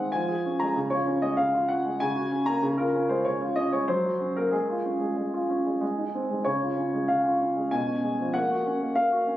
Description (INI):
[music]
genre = classical-period piano sonatina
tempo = 96 BPM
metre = 3/4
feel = straight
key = Db major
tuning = A4 = 440 Hz
[part]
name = warm baby grand piano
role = solo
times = 0.0-9.4 s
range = Cb3 to Bb5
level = -24 LUFS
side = equal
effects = none
[sound]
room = moderate recital hall reverb, RT60 1.5 s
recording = recorded on a phone in the room, club reverb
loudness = -24 LUFS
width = side -14 dB against mid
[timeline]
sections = 0.0-6.5 A section; 6.5-9.4 B section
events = none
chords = 0.1 Db/F; 0.8 Db; 2.0 Gb/Db; 2.6 Db; 3.9 Gb; 4.5 Db/Ab; 5.8 Ab; 6.5 Db; 7.7 Db7/Cb; 8.3 Gb/Bb